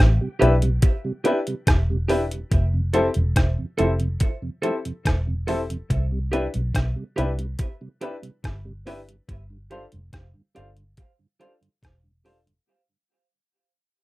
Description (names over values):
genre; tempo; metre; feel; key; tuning
lovers rock reggae; 71 BPM; 4/4; straight; C major; A4 = 440 Hz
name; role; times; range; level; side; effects
vintage muted fingered electric bass; bass; 0.0-12.6 s; E1 to C2; -22 LUFS; equal; none
detuned 8-bit digital drum machine; drums; 0.0-12.7 s; hi-hat, kick drum, rim click; -21 LUFS; equal; none
mellow tonewheel organ; accompaniment; 0.2-12.5 s; F2 to F4; -32 LUFS; right 2 dB; chorus vibrato, slow rotary speaker, dub echo
warm baby grand piano; accompaniment; 0.4-12.4 s; C4 to C5; -25 LUFS; left 3 dB; none
semi-hollow electric guitar; stabs; 0.4-12.4 s; G4 to F5; -28 LUFS; right 2 dB; dub echo
room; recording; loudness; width
little or no reverb; rough home demo mix; -21 LUFS; side -19 dB against mid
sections
0.0-12.7 A section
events
fade-out 0.0-12.7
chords
0.0 Cmaj7; 2.5 Fmaj7; 5.9 Cmaj7; 9.3 G7sus4